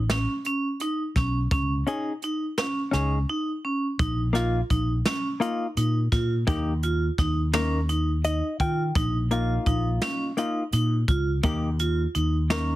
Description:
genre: progressive instrumental, band music in an uneven meter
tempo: 169 BPM (eighths)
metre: 7/8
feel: straight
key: unclear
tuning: A4 = 440 Hz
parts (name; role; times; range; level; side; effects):
- hollow-body jazz guitar; accompaniment; 0.0-12.8 s; Bb3 to G5; -28 LUFS; left 3 dB; none
- fretless electric bass; bass; 0.0-12.8 s; A1 to Eb3; -25 LUFS; equal; wide subtle chorus
- vibraphone with hard mallets; arpeggios; 0.1-12.7 s; C#4 to F4; -28 LUFS; right 2 dB; none
- jazz brush drum kit; drums; 0.1-12.7 s; hi-hat, kick drum, snare drum; -28 LUFS; equal; none
room: light reverb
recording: heavily compressed radio sound, multiband compression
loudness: -23 LUFS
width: side -16 dB against mid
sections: 0.0-4.0 A section; 4.0-12.8 B section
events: break 3.3-4.0; hollow-body jazz guitar fill 7.9-9.0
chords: 0.0 Aadd9; 1.5 Dbsus2; 4.0 Bbsus4; 6.5 Eb; 9.0 Bbsus4; 11.4 Eb

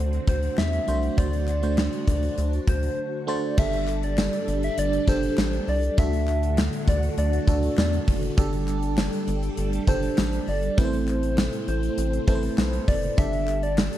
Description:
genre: 1980s-style pop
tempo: 100 BPM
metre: 4/4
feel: straight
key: unclear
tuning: A4 = 439 Hz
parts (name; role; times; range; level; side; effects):
- FM electric piano; accompaniment; 0.0-14.0 s; A3 to C5; -30 LUFS; right 3 dB; chorus, phaser
- string machine, full ensemble; sustained chords; 0.0-14.0 s; D3 to A4; -32 LUFS; equal; phaser, ensemble chorus
- rubbery square bass; bass; 0.0-13.9 s; F#1 to E2; -26 LUFS; equal; none
- gated 80s drum kit; drums; 0.1-14.0 s; crash cymbal, hi-hat, kick drum, snare drum, tambourine; -24 LUFS; equal; none
- soft struck synth lead; melody; 0.3-14.0 s; C5 to E5; -29 LUFS; left 1 dB; chorus, tremolo, slapback echo
- group handclap; percussion; 0.6-13.9 s; none; -44 LUFS; left 6 dB; none
room: small room ambience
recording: none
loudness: -22 LUFS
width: side -12 dB against mid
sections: 0.0-3.6 A section; 3.6-14.0 B section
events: break 3.0-3.6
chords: 0.0 D7; 3.6 Gsus2; 6.0 D; 8.4 Gsus2; 10.8 Amadd9; 13.2 Gsus2

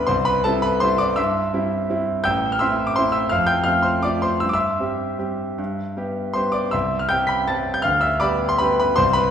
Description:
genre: classical, piano waltz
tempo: 150-177 BPM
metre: 3/4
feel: rubato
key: C major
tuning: A4 = 440 Hz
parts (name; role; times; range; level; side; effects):
- clear concert grand piano; solo; 0.0-9.3 s; A1 to B6; -18 LUFS; equal; none
room: wet recital hall reverb, RT60 1.4 s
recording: recorded in a church or concert hall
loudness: -18 LUFS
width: side -8 dB against mid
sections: 0.0-9.3 A section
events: none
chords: 0.1 C; 2.3 Am7; 3.3 F; 4.4 C/G; 5.6 G; 6.7 C; 7.8 G7/D

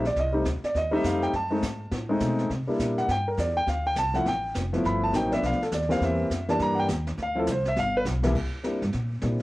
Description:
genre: jazz piano trio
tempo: 205 BPM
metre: 4/4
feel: swing 62% on 8ths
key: C mixolydian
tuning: A4 = 444 Hz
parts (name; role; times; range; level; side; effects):
- warm concert grand piano; melody; 0.0-9.4 s; C2 to B5; -25 LUFS; equal; none
- upright bass; bass; 0.0-9.4 s; F1 to C3; -29 LUFS; equal; none
- jazz brush drum kit; drums; 0.0-9.4 s; brushed snare drum, crash cymbal, hi-hat, kick drum, snare drum; -35 LUFS; equal; none
room: small room ambience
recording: home recording on cassette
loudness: -24 LUFS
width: side -18 dB against mid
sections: 0.0-8.3 A section; 8.3-9.4 A section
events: grand piano solo 0.0-8.3; drum fill 7.8-8.3; upright bass solo 8.3-9.4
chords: 0.0 F7; 1.3 F#dim7; 2.5 C7; 3.7 Dm7; 4.8 G7; 6.0 C7; 7.2 Dm7; 7.8 G; 8.3 C7

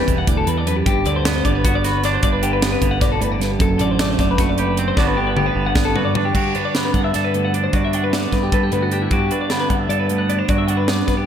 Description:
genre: math rock and midwest emo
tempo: 305 BPM (eighths)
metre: 7/8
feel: straight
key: G major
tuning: A4 = 440 Hz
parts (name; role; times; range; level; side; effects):
- twangy electric guitar; accompaniment; 0.0-11.3 s; D2 to A4; -21 LUFS; right 6 dB; slapback echo
- twelve-string electric guitar; arpeggios; 0.0-11.3 s; E4 to F#5; -22 LUFS; left 6 dB; slapback echo
- overdriven picked electric bass; bass; 0.1-11.3 s; E1 to G2; -22 LUFS; equal; none
- crisp fusion drum kit; drums; 0.1-11.2 s; crash cymbal, hi-hat, kick drum, snare drum, toms; -21 LUFS; equal; none
room: moderate lush hall reverb, RT60 1.6 s, small room ambience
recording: big arena sound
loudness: -16 LUFS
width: side -9 dB against mid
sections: 0.0-6.4 A section; 6.4-11.3 B section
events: drum fill 5.0-6.4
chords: 0.0 Em7; 0.9 Gmaj7; 3.6 D7/F#; 5.0 Gmaj7

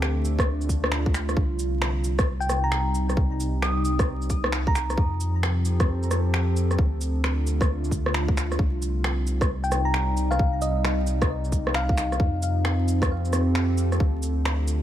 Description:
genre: future garage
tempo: 133 BPM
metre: 4/4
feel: swing 64% on 16ths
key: C dorian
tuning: A4 = 440 Hz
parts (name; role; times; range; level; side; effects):
- warbly tape-like pad; sustained chords; 0.0-14.8 s; C3 to A4; -30 LUFS; equal; chorus, built-in reverb, sidechain pumping
- warm sub bass; bass; 0.0-14.8 s; C2 to F2; -25 LUFS; equal; sidechain pumping
- electronic finger snaps, rim click, cabasa and shaker; drums; 0.0-14.8 s; none; -29 LUFS; equal; none
- electronic kick drum; drums; 0.4-14.1 s; none; -23 LUFS; equal; none
- thumb-piano-like synth pluck; melody; 2.4-5.0, 9.6-12.2 s; Eb5 to Eb6; -30 LUFS; left 1 dB; chorus, ping-pong delay
room: light reverb, digital ambience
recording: vinyl crackle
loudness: -22 LUFS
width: side -12 dB against mid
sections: 0.0-14.8 A section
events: none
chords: 0.0 Dm7; 1.4 Cmadd11; 5.0 F7; 6.8 Dm7; 8.6 Cmadd11; 12.2 F7; 14.0 Dm7

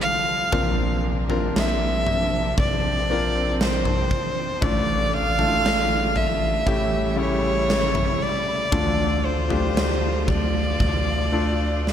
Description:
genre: pop ballad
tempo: 58 BPM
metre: 4/4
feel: straight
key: D minor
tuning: A4 = 440 Hz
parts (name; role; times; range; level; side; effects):
- rich violin; melody; 0.0-11.9 s; C5 to F5; -24 LUFS; equal; slapback echo
- clear concert grand piano; accompaniment; 0.0-11.9 s; A2 to C5; -28 LUFS; left 3 dB; slapback echo
- bright studio string section; sustained chords; 0.0-11.9 s; C3 to F4; -31 LUFS; right 1 dB; none
- saturated sub bass; bass; 0.5-11.9 s; A1 to D2; -26 LUFS; right 1 dB; none
- huge arena drum kit; drums; 0.5-11.9 s; kick drum, snare drum, toms; -26 LUFS; equal; none
room: light reverb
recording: none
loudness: -20 LUFS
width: side -9 dB against mid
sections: 0.0-11.9 A section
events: none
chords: 0.0 Dm; 0.5 Bbadd9; 4.6 Dm/A; 6.7 A7; 8.7 Dm

